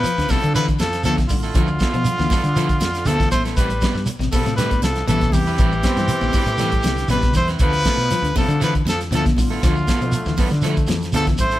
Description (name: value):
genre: afrobeat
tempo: 119 BPM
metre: 4/4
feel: straight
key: D dorian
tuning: A4 = 440 Hz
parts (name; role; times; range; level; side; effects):
- warm trumpet; melody; 0.0-11.6 s; F4 to C5; -23 LUFS; equal; none
- raspy tenor saxophone; second line; 0.0-11.6 s; D3 to A3; -32 LUFS; right 1 dB; none
- electric guitar at the edge of break-up; arpeggios; 0.0-11.5 s; B2 to A3; -27 LUFS; left 5 dB; spring reverb
- electric guitar at the edge of break-up; stabs; 0.0-11.6 s; F3 to B4; -29 LUFS; right 4 dB; none
- woody fretless electric bass; bass; 0.0-11.6 s; A1 to D3; -23 LUFS; equal; none
- shekere; percussion; 0.0-11.6 s; none; -28 LUFS; right 2 dB; none
- damped 70s drum kit; drums; 0.1-11.6 s; hi-hat, kick drum, snare drum; -21 LUFS; equal; none
- congas; percussion; 0.3-11.5 s; none; -28 LUFS; equal; none
- warm bass trombone; second line; 5.8-11.0 s; A3 to C4; -29 LUFS; equal; none
room: moderate stone room reverb, RT60 1.1 s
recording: band playing live in one room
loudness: -16 LUFS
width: side -14 dB against mid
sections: 0.0-11.6 A section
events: none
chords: 0.0 Dm69; 3.6 Am9; 7.6 Dm69